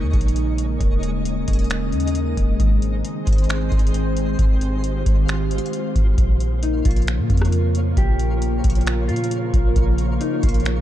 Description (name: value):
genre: hip hop, atmospheric cloud-rap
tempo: 134 BPM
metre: 4/4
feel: half-time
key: Bb dorian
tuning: A4 = 440 Hz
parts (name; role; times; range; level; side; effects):
- dark analog pad; sustained chords; 0.0-10.8 s; Db3 to C5; -25 LUFS; equal; chorus, phaser, sidechain pumping
- soft 808-style bass; bass; 0.0-10.8 s; Eb1 to Bb2; -21 LUFS; equal; none
- twinkling granular texture; texture; 0.0-10.8 s; Ab3 to Eb5; -33 LUFS; equal; built-in reverb
- booming analog drum machine; drums; 0.1-10.8 s; finger snaps, hi-hat, kick drum, rim click; -20 LUFS; equal; none
- mellow electric guitar; melody; 6.6-10.6 s; Eb4 to G4; -28 LUFS; left 3 dB; low-pass filter, tape echo
room: little or no reverb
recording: dark, warm production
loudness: -17 LUFS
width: side -12 dB against mid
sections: 0.0-6.2 A section; 6.2-10.8 B section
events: none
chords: 0.0 Eb7sus4; 2.6 Ab; 6.2 Bbm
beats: 0.36 | 0.81 1.25 1.70 2.15 | 2.60 3.04 3.49 3.94 | 4.39 4.84 5.28 5.73 | 6.18 6.63 7.08 7.52 | 7.97 8.42 8.87 9.31 | 9.76 10.21 10.66